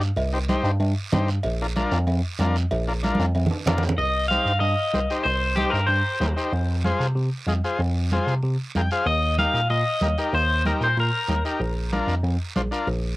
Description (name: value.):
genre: latin, cumbia.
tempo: 189 BPM.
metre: 4/4.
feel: straight.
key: C minor.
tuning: A4 = 440 Hz.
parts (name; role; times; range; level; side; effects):
overdriven combo organ; accompaniment; 0.0-12.9 s; D4 to G5; -26 LUFS; left 2 dB; none.
bell-like tine electric piano; bass; 0.0-13.2 s; Bb1 to C3; -24 LUFS; equal; none.
guiro; percussion; 0.0-13.2 s; none; -38 LUFS; right 5 dB; none.
congas; percussion; 0.2-13.0 s; none; -28 LUFS; right 1 dB; none.
cowbell and timbales; percussion; 0.2-3.9 s; none; -32 LUFS; right 2 dB; none.
electric guitar at the edge of break-up; melody; 4.0-6.3, 9.1-11.4 s; G4 to F5; -23 LUFS; left 1 dB; spring reverb, cassette tape.
room: light reverb.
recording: home recording on cassette.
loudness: -20 LUFS.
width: side -19 dB against mid.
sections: 0.0-4.0 A section; 4.0-13.2 B section.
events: drum fill 3.0-4.0; transistor combo organ fill 8.6-9.1.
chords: 0.0 Cm; 1.4 Bb; 4.0 Cm; 6.5 Fm; 9.1 Eb; 11.6 Bb.